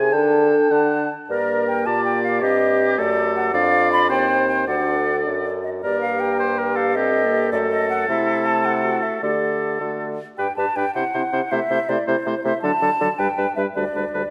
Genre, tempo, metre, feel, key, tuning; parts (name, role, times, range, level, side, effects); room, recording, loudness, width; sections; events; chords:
quick classical-period movement for wind quintet; 106 BPM (dotted quarters); 6/8; straight; G minor, G major from 8.1 s; A4 = 444 Hz
hollow concert flute; melody; 0.0-14.3 s; C5 to B5; -26 LUFS; equal
warm oboe; second line; 0.0-14.2 s; G4 to Ab5; -26 LUFS; equal
mellow French horn; accompaniment; 0.0-14.2 s; F#3 to A4; -28 LUFS; equal
warm bassoon; bass; 0.0-14.2 s; D2 to D3; -27 LUFS; equal
warm clarinet; accompaniment; 0.1-14.2 s; D4 to C5; -29 LUFS; equal
moderate scoring stage reverb, RT60 1.6 s; -20 LUFS; mono
0.0-1.3 A section; 1.3-10.4 B section; 10.4-14.3 C section
0.1 Dsus4; 1.3 Gm; 2.4 Cm/G; 3.0 D/F#; 3.5 Bdim/F; 4.1 Cm/Eb; 4.7 D; 5.8 Gm; 7.0 Am7b5/G; 7.5 F#m6; 8.1 Am/C; 9.2 Dsus4; 9.8 D; 10.4 G; 11.0 C; 11.5 Am/C; 12.6 D; 13.2 G; 13.8 G/D